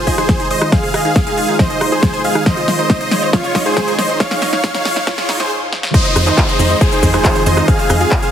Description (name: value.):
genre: uplifting trance.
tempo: 138 BPM.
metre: 4/4.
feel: straight.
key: F minor.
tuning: A4 = 441 Hz.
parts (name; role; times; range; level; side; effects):
big supersaw lead; melody; 0.0-8.3 s; F4 to F5; -17 LUFS; equal; sidechain pumping, digital delay.
lush unison pad; sustained chords; 0.0-8.3 s; Eb3 to Db5; -23 LUFS; equal; chorus, sidechain pumping.
riser and downlifter; sound effects; 1.8-8.3 s; none; -25 LUFS; left 1 dB; none.
wide unison pluck; arpeggios; 0.1-8.3 s; Eb4 to Ab5; -24 LUFS; right 4 dB; sidechain pumping, digital delay.
big-room dance drum kit; drums; 0.1-8.3 s; crash cymbal, handclaps, hi-hat, rim click, shaker, snare drum; -20 LUFS; equal; overdrive, sidechain pumping on hats, sidechain pumping on cymbals, sidechain pumping on perc.
electronic kick drum; drums; 0.1-8.2 s; none; -15 LUFS; equal; overdrive.
tight sequencer bass; bass; 6.2-8.1 s; F2; -15 LUFS; equal; sidechain pumping.
room: light reverb.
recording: heavily compressed radio sound, multiband compression, high-pass filter, faint mains hum.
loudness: -12 LUFS.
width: side -9 dB against mid.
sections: 0.0-5.9 A section; 5.9-8.3 B section.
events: build-up 0.0-5.9; drum fill 0.0-5.5, 5.7; filter sweep 0.0-5.9; drop 5.9-8.3.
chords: 0.0 Fm7; 2.5 Dbadd9; 5.9 Fm7.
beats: 0.29 | 0.72 1.16 1.59 2.03 | 2.46 2.90 3.33 3.77 | 4.20 4.64 5.07 5.51 | 5.94 6.38 6.81 7.25 | 7.68 8.11.